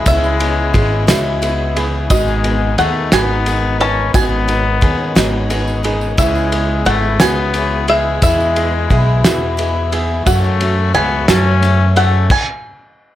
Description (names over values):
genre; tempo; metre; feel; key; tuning
indie folk with a building arrangement; 59 BPM (dotted quarters); 6/8; straight; C# minor; A4 = 443 Hz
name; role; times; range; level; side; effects
bluegrass banjo; melody; 0.0-13.2 s; D#5 to A5; -18 LUFS; left 1 dB; slapback echo
warm trumpet; second line; 0.0-12.3 s; G#3 to C#4; -20 LUFS; left 6 dB; none
picked swing-style acoustic guitar; accompaniment; 0.0-12.3 s; F#2 to A4; -23 LUFS; left 6 dB; none
warm upright piano; accompaniment; 0.0-12.3 s; F#1 to G#5; -27 LUFS; right 2 dB; none
warm studio string section; sustained chords; 0.0-12.3 s; B2 to G#4; -27 LUFS; right 1 dB; none
tenor ukulele; arpeggios; 0.0-12.3 s; E4 to B4; -23 LUFS; right 8 dB; none
upright bass; bass; 0.1-12.3 s; G#1 to F#2; -17 LUFS; equal; none
cloth-damped thuddy drum kit; drums; 0.1-12.5 s; crash cymbal, kick drum, ride cymbal, snare drum; -19 LUFS; equal; none
tambourine; percussion; 0.1-11.7 s; none; -29 LUFS; right 10 dB; none
room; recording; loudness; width
little or no reverb; none; -12 LUFS; side -13 dB against mid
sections
0.0-13.2 A section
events
upright piano fill 1.1-2.1; stop 12.3-13.2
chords
0.0 C#m7; 2.1 G#m; 6.2 C#m7; 8.2 E; 10.3 F#m; 12.3 N.C.